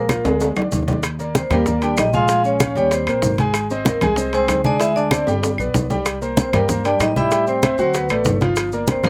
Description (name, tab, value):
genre	Afro-Cuban jazz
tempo	191 BPM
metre	4/4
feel	straight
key	Eb major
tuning	A4 = 443 Hz
part	vibraphone with medium hard mallets	melody	0.0-9.1 s	Ab4 to F5	-23 LUFS	equal	none
part	clear trombone	second line	0.0-9.1 s	Ab3 to F4	-28 LUFS	equal	slapback echo
part	clear concert grand piano	accompaniment	0.0-9.1 s	F3 to Ab5	-25 LUFS	equal	slapback echo
part	upright bass	bass	0.0-9.1 s	G1 to A2	-27 LUFS	equal	none
part	bongos	percussion	0.1-9.1 s	none	-29 LUFS	equal	none
part	claves	percussion	0.1-9.1 s	none	-30 LUFS	equal	none
part	congas	percussion	0.1-9.1 s	none	-24 LUFS	equal	none
part	maracas	percussion	0.1-9.1 s	none	-36 LUFS	equal	none
part	timbales	percussion	0.1-9.1 s	none	-27 LUFS	equal	none
room	light reverb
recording	recorded outdoors, with no room sound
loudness	-19 LUFS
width	mono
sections	0.0-1.0 A section; 1.0-9.1 B section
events	drum fill 0.2-1.0, 5.3-6.1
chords	0.0 Bb7; 1.0 Ebmaj7; 2.3 Bbm7; 2.9 Eb6; 3.5 Ab; 4.8 E7alt; 5.4 G; 6.1 C5; 7.3 Am7; 7.9 D; 8.6 Gm7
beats	0.09 0.41 0.72 | 1.03 1.35 1.66 1.98 | 2.29 2.61 2.92 3.23 | 3.55 3.86 4.18 4.49 | 4.80 5.12 5.43 5.75 | 6.06 6.37 6.69 7.00 | 7.32 7.63 7.95 8.26 | 8.57 8.89